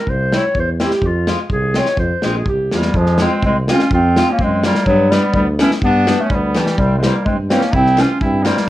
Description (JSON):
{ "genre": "alpine folk, alpine dance band", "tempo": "125 BPM", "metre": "2/4", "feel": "straight", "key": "F harmonic minor", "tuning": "A4 = 441 Hz", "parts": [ { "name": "mellow clarinet", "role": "melody", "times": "0.0-8.7 s", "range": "E3 to Db5", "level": "-16 LUFS", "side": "equal", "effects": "none" }, { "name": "mellow tuba", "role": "bass", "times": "0.1-8.5 s", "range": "Bb1 to G2", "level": "-19 LUFS", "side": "equal", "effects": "tube saturation" }, { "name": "loose indie drum kit", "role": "drums", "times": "0.1-8.7 s", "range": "hi-hat, kick drum, snare drum", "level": "-21 LUFS", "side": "equal", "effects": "none" }, { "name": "picked acoustic archtop guitar", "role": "accompaniment", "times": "0.3-8.6 s", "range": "E3 to F4", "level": "-21 LUFS", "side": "left 1 dB", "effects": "none" }, { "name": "clear trumpet", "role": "second line", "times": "2.7-8.7 s", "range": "G3 to F4", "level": "-24 LUFS", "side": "right 3 dB", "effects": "none" } ], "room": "moderate studio reverb, RT60 0.6 s", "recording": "worn, warbling old tape, cassette tape, warbly pitch drift", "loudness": "-13 LUFS", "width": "side -15 dB against mid", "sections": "0.0-3.0 A section; 3.0-8.7 A section", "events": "none", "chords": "0.0 C; 1.0 Fm; 4.9 G; 6.8 C" }